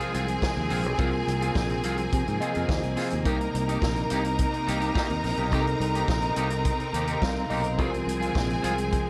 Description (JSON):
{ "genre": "disco", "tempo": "106 BPM", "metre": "4/4", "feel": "straight", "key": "C minor", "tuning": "A4 = 439 Hz", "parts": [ { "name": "clear studio violin section", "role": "second line", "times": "0.0-9.1 s", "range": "Ab4 to Bb5", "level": "-34 LUFS", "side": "equal", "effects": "none" }, { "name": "electric guitar at the edge of break-up", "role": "accompaniment", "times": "0.0-9.1 s", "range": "Bb3 to Ab4", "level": "-36 LUFS", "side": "equal", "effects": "vibrato effect" }, { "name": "mellow tine electric piano", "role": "accompaniment", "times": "0.0-9.1 s", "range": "C3 to F5", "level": "-34 LUFS", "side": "equal", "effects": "none" }, { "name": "bright studio string section", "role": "sustained chords", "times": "0.0-9.1 s", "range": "C3 to Eb4", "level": "-36 LUFS", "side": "equal", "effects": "none" }, { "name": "vintage drum kit", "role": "drums", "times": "0.0-9.1 s", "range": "hi-hat, kick drum, snare drum", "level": "-32 LUFS", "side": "equal", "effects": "none" }, { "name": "fingered electric bass", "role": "bass", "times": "0.1-9.0 s", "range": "Bb1 to C3", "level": "-32 LUFS", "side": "equal", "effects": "none" } ], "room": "light reverb, studio reverb", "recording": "none", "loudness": "-26 LUFS", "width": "mono", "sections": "0.0-9.1 A section", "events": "tine electric piano fill 2.1-3.3, 6.9-7.8", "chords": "0.0 Ab6; 3.3 Cm7; 7.8 Ab6" }